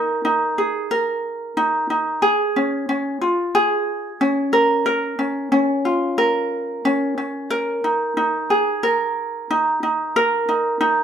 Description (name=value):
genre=pop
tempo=91 BPM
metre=4/4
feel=straight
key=unclear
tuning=A4 = 440 Hz
part: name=ukulele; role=solo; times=0.0-11.0 s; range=Db4 to Bb4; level=-18 LUFS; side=right 1 dB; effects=none
room=wet large studio reverb, RT60 0.9 s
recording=band playing live in one room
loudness=-18 LUFS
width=side -8 dB against mid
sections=0.0-11.0 A section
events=none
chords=0.0 Absus2; 2.2 Db; 4.5 Bbm; 7.5 Ebsus4